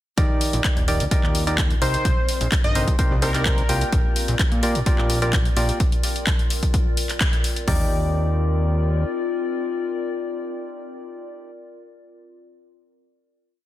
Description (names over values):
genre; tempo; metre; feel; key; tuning
piano house; 128 BPM; 4/4; straight; Eb major; A4 = 440 Hz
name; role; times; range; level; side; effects
percussive organ stab; riff; 0.2-11.5 s; C3 to G5; -27 LUFS; equal; chorus, sidechain pumping, digital delay
fat analog bass; bass; 0.2-9.0 s; Eb1 to Bb2; -23 LUFS; equal; sidechain pumping
house drum kit; drums; 0.2-7.8 s; hi-hat, kick drum, toms; -21 LUFS; equal; studio reverb
house drum kit; drums; 0.2-7.7 s; handclaps, hi-hat; -26 LUFS; left 1 dB; studio reverb
warbly tape-like pad; texture; 1.0-11.7 s; C4 to D5; -31 LUFS; left 4 dB; chorus, built-in reverb, phaser, sidechain pumping
plucky unison lead; melody; 1.8-3.9 s; Bb4 to Eb5; -28 LUFS; equal; digital delay
room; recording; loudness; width
digital ambience; dense, heavily limited modern master; -19 LUFS; side -14 dB against mid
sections
0.2-7.7 drop; 7.7-11.4 final chord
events
drop 0.2-7.7; band accent 7.2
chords
0.2 Ebmaj7; 1.8 Cm7; 3.9 Gm7/Bb; 5.8 Bb; 7.7 Ebmaj7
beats
| 0.18 0.65 1.11 1.58 | 2.05 2.52 2.99 3.46 | 3.93 4.39 4.86 5.33 | 5.80 6.27 6.74 7.21 | 7.68 8.14 8.61 9.08 | 9.55 10.02 10.49 10.96